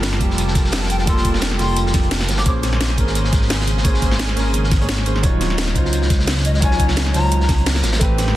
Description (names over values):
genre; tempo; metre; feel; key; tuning
liquid drum and bass; 173 BPM; 4/4; swing 54% on 16ths; unclear; A4 = 439 Hz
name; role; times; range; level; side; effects
warm grand piano; accompaniment; 0.0-8.4 s; Gb3 to Db5; -24 LUFS; right 2 dB; dub echo
lush unison pad; sustained chords; 0.0-8.4 s; Db3 to C5; -28 LUFS; equal; chorus
dark detuned saw bass; bass; 0.0-8.4 s; Eb1 to Db2; -20 LUFS; equal; none
crunchy breakbeat drum kit; drums; 0.0-8.3 s; hi-hat, snare drum; -27 LUFS; equal; high-pass filter on hats, high-pass filter on snare, high-pass filter on room
drum and bass drum kit; drums; 0.0-8.3 s; hi-hat, snare drum; -24 LUFS; equal; overdrive
electronic kick drum; drums; 0.2-8.1 s; none; -18 LUFS; equal; overdrive
breathy hollow jazz flute; melody; 0.9-2.5, 6.5-7.5 s; Eb5 to D6; -26 LUFS; left 3 dB; digital delay
room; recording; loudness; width
light reverb, small room ambience; dense, heavily limited modern master, lossy compression artefacts; -15 LUFS; side -14 dB against mid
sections
0.0-8.4 A section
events
none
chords
0.0 Gm9; 2.5 Bbm9; 5.2 Ebm9; 7.8 Am9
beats
0.03 0.38 0.73 | 1.07 1.42 1.77 2.11 | 2.46 2.81 3.15 3.50 | 3.85 4.20 4.54 4.89 | 5.24 5.58 5.93 6.28 | 6.62 6.97 7.32 7.66 | 8.01 8.36